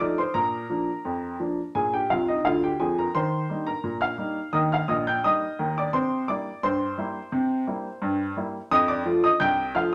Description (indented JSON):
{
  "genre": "ragtime piano",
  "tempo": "86 BPM",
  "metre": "2/4",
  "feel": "straight",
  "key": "Eb major",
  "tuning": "A4 = 440 Hz",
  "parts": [
    { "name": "clear upright piano", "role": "solo", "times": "0.0-9.9 s", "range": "Bb1 to G6", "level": "-25 LUFS", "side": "equal", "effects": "none" }
  ],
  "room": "wet studio reverb, RT60 0.5 s",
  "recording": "none",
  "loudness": "-25 LUFS",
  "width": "mono",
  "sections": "0.0-9.9 A section",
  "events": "upright piano fill 2.1-3.1",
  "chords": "0.3 Bb; 3.1 Eb; 5.9 C7; 8.7 F7",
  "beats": "| 0.34 1.04 | 1.74 2.44 | 3.14 3.84 | 4.54 5.23 | 5.93 6.63 | 7.32 8.02 | 8.71 9.41"
}